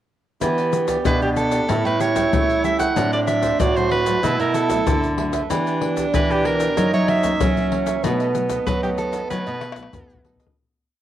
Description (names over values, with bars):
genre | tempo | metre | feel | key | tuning
samba and choro | 95 BPM | 4/4 | straight | E minor | A4 = 440 Hz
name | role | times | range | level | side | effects
breathy tenor saxophone | second line | 0.4-10.3 s | B3 to F#4 | -22 LUFS | right 5 dB | cassette tape
cavaquinho | accompaniment | 0.4-10.6 s | D#4 to G5 | -30 LUFS | right 6 dB | cassette tape
nylon-string guitar | accompaniment | 0.4-10.5 s | F#2 to G4 | -31 LUFS | left 7 dB | cassette tape
nylon-string guitar | bass | 0.4-10.5 s | A2 to B3 | -24 LUFS | left 1 dB | none
tube shaker, surdo, pandeiro and tamborim | percussion | 0.4-10.6 s | none | -25 LUFS | left 4 dB | none
edgy soprano saxophone | melody | 1.1-10.2 s | G4 to F#5 | -24 LUFS | right 1 dB | cassette tape
room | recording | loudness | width
moderate spring reverb, RT60 1.7 s, small room reverb | home recording on cassette | -18 LUFS | side -12 dB against mid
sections
0.4-10.6 A section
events
fade-out 8.0-10.6; drum fill 9.6-10.6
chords
0.4 Em7; 1.7 A7; 3.0 D7/A; 4.2 B7sus4; 5.5 Em7; 6.8 F#7; 8.0 B7